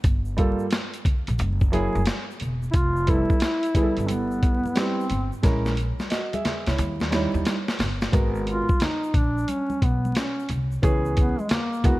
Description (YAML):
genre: hip hop, jazz-hop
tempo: 89 BPM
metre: 4/4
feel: swing 65% on 16ths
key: unclear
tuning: A4 = 440 Hz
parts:
  - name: upright bass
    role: bass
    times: 0.0-12.0 s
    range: E1 to D#2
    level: -27 LUFS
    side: equal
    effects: none
  - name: boom bap sampler-style drum kit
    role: drums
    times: 0.0-12.0 s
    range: hi-hat, kick drum, snare drum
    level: -23 LUFS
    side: equal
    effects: none
  - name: tube shaker and congas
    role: percussion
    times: 0.0-12.0 s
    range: none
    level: -36 LUFS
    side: left 1 dB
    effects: none
  - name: dark grand piano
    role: accompaniment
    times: 0.4-12.0 s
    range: E3 to E5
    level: -27 LUFS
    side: right 1 dB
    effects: none
  - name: mellow duduk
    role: melody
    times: 2.7-12.0 s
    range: G#3 to F4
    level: -26 LUFS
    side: equal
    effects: none
room: light reverb, studio reverb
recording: dark, warm production, vinyl crackle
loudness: -21 LUFS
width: side -18 dB against mid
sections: 0.0-8.1 A section; 8.1-12.0 B section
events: drum fill 5.4-8.1; duduk solo 8.1-12.0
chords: 0.0 Gm9; 1.4 F#9; 2.7 Fmaj9#11; 5.4 A#m7b5; 6.8 D#7b9; 8.1 G#m9; 10.8 C#m7